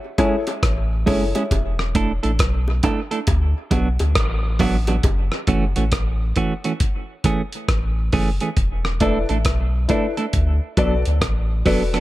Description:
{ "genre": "dub reggae", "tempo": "68 BPM", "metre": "4/4", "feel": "swing 64% on 16ths", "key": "unclear", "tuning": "A4 = 441 Hz", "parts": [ { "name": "clean electric guitar", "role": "accompaniment", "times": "0.2-12.0 s", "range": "E3 to A4", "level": "-23 LUFS", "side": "right 4 dB", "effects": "dub echo" }, { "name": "dark upright piano", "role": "stabs", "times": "0.2-1.4, 9.0-12.0 s", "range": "E4 to D5", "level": "-24 LUFS", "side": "left 4 dB", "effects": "dub echo" }, { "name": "dusty soul sampler-style drum kit", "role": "drums", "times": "0.2-12.0 s", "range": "hi-hat, kick drum, rim click", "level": "-22 LUFS", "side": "equal", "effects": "none" }, { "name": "bongos", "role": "percussion", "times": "0.2-5.3 s", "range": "none", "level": "-30 LUFS", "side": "equal", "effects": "dub echo" }, { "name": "soft dub sub bass", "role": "bass", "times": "0.6-12.0 s", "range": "E1 to D2", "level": "-21 LUFS", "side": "equal", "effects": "none" } ], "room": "light reverb, digital ambience", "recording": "none", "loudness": "-18 LUFS", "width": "side -16 dB against mid", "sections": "0.0-12.0 A section", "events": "part muted 5.0-12.0", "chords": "0.0 Amaj7; 1.5 E7sus4; 3.3 D6; 5.0 F#m7; 6.8 Amaj7; 8.6 E7sus4; 10.3 D6" }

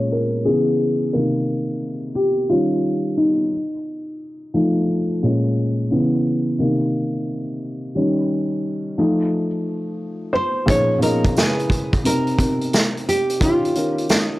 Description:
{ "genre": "lo-fi hip hop", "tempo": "88 BPM", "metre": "4/4", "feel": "swing 65% on 16ths", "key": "unclear", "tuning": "A4 = 439 Hz", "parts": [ { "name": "felt-muted upright piano", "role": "accompaniment", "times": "0.0-14.4 s", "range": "Bb2 to Eb5", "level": "-19 LUFS", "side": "equal", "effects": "cassette tape" }, { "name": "nylon-string guitar", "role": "melody", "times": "10.4-14.4 s", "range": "Eb4 to Db5", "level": "-22 LUFS", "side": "right 1 dB", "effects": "none" }, { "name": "vintage drum kit", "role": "drums", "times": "10.7-14.3 s", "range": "hi-hat, kick drum, snare drum", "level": "-20 LUFS", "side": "equal", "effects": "none" }, { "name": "tambourine", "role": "percussion", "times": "11.4-14.3 s", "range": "none", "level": "-37 LUFS", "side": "right 4 dB", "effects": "none" } ], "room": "light reverb", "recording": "dry, gritty hardware recording, low-pass filter", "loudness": "-18 LUFS", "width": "side -18 dB against mid", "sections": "0.0-10.7 A section; 10.7-14.4 B section", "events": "felt piano solo 0.0-10.7; filter sweep 0.0-10.7", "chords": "0.5 Dbm7; 1.1 Cm7; 2.5 Eb9; 3.5 F7; 5.2 Bbm7; 5.9 Dbm7; 6.6 Cm7; 8.0 Eb7; 9.0 F7; 10.7 Bbm7; 11.4 Dbm7; 12.0 Cm7; 13.4 Eb9" }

